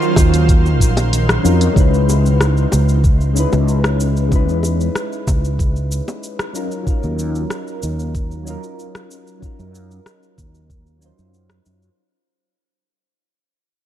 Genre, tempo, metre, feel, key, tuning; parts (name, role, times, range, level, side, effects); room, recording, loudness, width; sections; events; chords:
sunset chillout; 94 BPM; 4/4; straight; A4 = 442 Hz
semi-hollow electric guitar; melody; 0.0-1.4 s; E#4; -26 LUFS; right 1 dB; vintage 12-bit sampler grit, digital delay
soft electric-piano-like synth keys; accompaniment; 0.0-12.0 s; F#3 to E#5; -22 LUFS; moving between left 5 dB and right 5 dB; chorus, phaser, auto-pan, vintage 12-bit sampler grit, tape echo
shimmering ambient pad; sustained chords; 0.0-1.7 s; D#3 to E#5; -24 LUFS; right 1 dB; chorus, built-in reverb
smooth R&B drum kit; drums; 0.0-11.9 s; cabasa, hi-hat, rim click; -24 LUFS; left 1 dB; studio reverb
fretless electric bass; bass; 0.2-11.9 s; A#1 to F#2; -16 LUFS; equal; tube saturation, ensemble chorus
electronic kick drum; drums; 0.2-10.8 s; -15 LUFS; equal; studio reverb
bongos; percussion; 0.2-6.2 s; -26 LUFS; equal
digital ambience; dark, warm production; -14 LUFS; side -11 dB against mid
0.0-1.8 A section; 1.8-12.0 B section
fade-out 1.8-12.0
0.0 D#m9; 1.8 C#m9; 6.5 D#m9